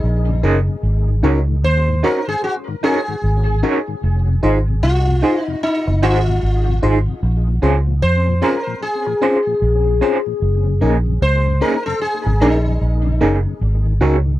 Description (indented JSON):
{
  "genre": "reggae",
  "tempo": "75 BPM",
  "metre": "4/4",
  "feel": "swing 62% on 16ths",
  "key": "Bb minor",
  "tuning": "A4 = 440 Hz",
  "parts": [
    { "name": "sitar", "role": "melody", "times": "0.0-13.2 s", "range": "Eb4 to C5", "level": "-21 LUFS", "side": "left 1 dB", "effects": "tape echo" },
    { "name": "vintage muted fingered electric bass", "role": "bass", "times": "0.0-14.4 s", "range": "F1 to F2", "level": "-16 LUFS", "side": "equal", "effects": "none" },
    { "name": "mellow tonewheel organ", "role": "accompaniment", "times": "0.3-14.3 s", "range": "F2 to Ab4", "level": "-28 LUFS", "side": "left 6 dB", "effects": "overdrive, chorus vibrato, slow rotary speaker, tape echo" },
    { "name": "FM electric piano with tremolo", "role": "accompaniment", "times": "0.4-14.2 s", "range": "Db4 to C5", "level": "-19 LUFS", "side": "left 2 dB", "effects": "none" },
    { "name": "electric guitar through a small old amp", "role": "stabs", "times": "0.4-14.2 s", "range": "Bb3 to Eb5", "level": "-20 LUFS", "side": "right 6 dB", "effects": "tremolo" }
  ],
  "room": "little or no reverb",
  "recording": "dry, close 1970s-style studio recording",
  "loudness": "-14 LUFS",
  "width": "side -15 dB against mid",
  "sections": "0.0-14.4 A section",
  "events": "none",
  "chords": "0.0 Gb69; 0.8 Ab7sus4; 4.0 Fm7; 7.2 Bbm9; 10.4 Gb69; 13.6 Ab7sus4"
}